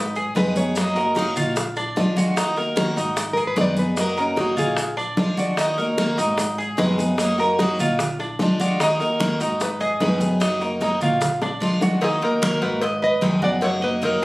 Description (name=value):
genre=latin, Cuban son and guajira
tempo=149 BPM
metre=4/4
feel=straight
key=Eb harmonic minor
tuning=A4 = 442 Hz
part: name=nylon-string guitar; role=melody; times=0.0-6.0, 8.6-14.2 s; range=Db4 to F5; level=-25 LUFS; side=equal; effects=none
part: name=Cuban tres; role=arpeggios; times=0.0-14.2 s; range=D4 to Eb5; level=-24 LUFS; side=right 1 dB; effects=none
part: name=upright bass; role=bass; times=0.0-14.2 s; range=Gb1 to Eb2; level=-31 LUFS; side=equal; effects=none
part: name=bongos and cowbell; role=percussion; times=0.2-14.2 s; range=none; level=-27 LUFS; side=left 1 dB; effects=none
part: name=congas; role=percussion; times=0.2-14.2 s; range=none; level=-25 LUFS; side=equal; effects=none
part: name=maracas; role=percussion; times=0.2-12.0 s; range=none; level=-35 LUFS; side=right 1 dB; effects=none
part: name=picked steel-string acoustic guitar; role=accompaniment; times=0.3-14.2 s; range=Eb3 to Ab4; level=-24 LUFS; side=equal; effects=none
room=moderate studio ambience, RT60 0.5 s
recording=recorded on a phone in the room, studio reverb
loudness=-19 LUFS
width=side -20 dB against mid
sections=0.0-12.0 A section; 12.0-14.2 B section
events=nylon-string guitar solo 0.0-12.0; drum fill 11.4-12.0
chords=0.0 Abm; 0.8 Gb6; 1.6 Bb7; 2.4 Ebm; 3.2 Abm; 4.0 Gb6; 4.8 Bb7; 5.6 Ebm; 6.4 Abm; 7.2 Gb6; 8.0 Bb7; 8.8 Ebm; 9.6 Abm; 10.4 Gb6; 11.2 Bb7; 12.0 Ebm; 12.8 Abm; 13.6 Gb6